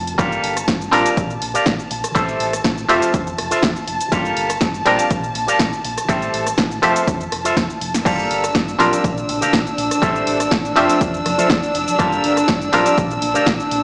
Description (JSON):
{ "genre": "filtered disco house", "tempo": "122 BPM", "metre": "4/4", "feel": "straight", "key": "unclear", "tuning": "A4 = 439 Hz", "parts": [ { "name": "muted clav", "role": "accompaniment", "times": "0.0-13.8 s", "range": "F3 to A5", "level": "-19 LUFS", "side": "equal", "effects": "phaser, sidechain pumping" }, { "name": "warm chamber violin section", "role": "sustained chords", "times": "0.0-13.8 s", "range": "D4 to E6", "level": "-21 LUFS", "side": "equal", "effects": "vintage 12-bit sampler grit, sidechain pumping" }, { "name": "fingered electric bass", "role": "bass", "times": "0.0-13.8 s", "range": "F1 to Bb2", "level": "-31 LUFS", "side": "equal", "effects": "sidechain pumping" }, { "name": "punchy analog drum machine", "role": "drums", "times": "0.1-13.8 s", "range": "cabasa, crash cymbal, hi-hat, rim click, snare drum", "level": "-22 LUFS", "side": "equal", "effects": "none" }, { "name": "electric guitar with an envelope filter", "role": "riff", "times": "0.2-13.7 s", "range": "F4 to F5", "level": "-21 LUFS", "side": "equal", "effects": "sidechain pumping" }, { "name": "electronic kick drum", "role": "drums", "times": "0.2-13.6 s", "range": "none", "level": "-22 LUFS", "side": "equal", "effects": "none" }, { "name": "egg shaker and congas", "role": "percussion", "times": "8.1-13.8 s", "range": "none", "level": "-30 LUFS", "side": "equal", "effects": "sidechain pumping on perc" } ], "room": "moderate lush hall reverb, RT60 2.0 s", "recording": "played on a big sound system in a bare room, stone room reverb, small speaker sound", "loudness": "-15 LUFS", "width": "side -34 dB against mid", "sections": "0.0-13.8 A section", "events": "drum fill 7.6-8.1", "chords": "0.2 Gm9; 0.9 Bb6; 2.2 Am7; 2.9 Fmaj7; 4.1 Gm9; 4.9 Bb6; 6.1 Am7; 6.8 Fmaj7; 8.1 Gm9; 8.8 Bb6; 10.0 Am7; 10.8 Fmaj7; 12.0 Gm9; 12.7 Bb6" }